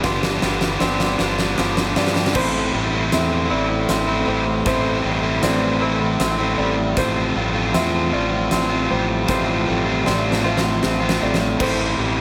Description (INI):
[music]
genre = post-rock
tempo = 78 BPM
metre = 3/4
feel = straight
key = A minor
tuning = A4 = 436 Hz
[part]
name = felt-muted upright piano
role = arpeggios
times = 0.0-12.2 s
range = C5 to C6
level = -31 LUFS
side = equal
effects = analog delay
[part]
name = twangy electric guitar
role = arpeggios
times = 0.0-12.2 s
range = G2 to F4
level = -28 LUFS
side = equal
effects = analog delay
[part]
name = distorted electric guitar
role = riff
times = 0.0-12.2 s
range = G2 to G4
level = -26 LUFS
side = equal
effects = overdrive
[part]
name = overdriven semi-hollow guitar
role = riff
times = 0.0-12.2 s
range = G2 to G4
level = -27 LUFS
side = equal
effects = none
[part]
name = modern bright fingered electric bass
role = bass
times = 0.0-12.2 s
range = G1 to G2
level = -28 LUFS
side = equal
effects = none
[part]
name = big rock drum kit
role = drums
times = 0.0-11.8 s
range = crash cymbal, hi-hat, kick drum, snare drum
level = -27 LUFS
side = equal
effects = none
[part]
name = clear chamber string section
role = sustained chords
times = 0.1-12.2 s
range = F4 to C6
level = -35 LUFS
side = equal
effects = none
[sound]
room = light reverb, studio reverb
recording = none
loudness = -20 LUFS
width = mono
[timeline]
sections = 0.0-2.4 A section; 2.4-12.2 B section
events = build-up 0.0-2.4; drum fill 0.0-2.4, 10.1-11.6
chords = 0.0 G7sus4; 2.4 Am7; 7.0 Fadd9/A; 11.6 Am7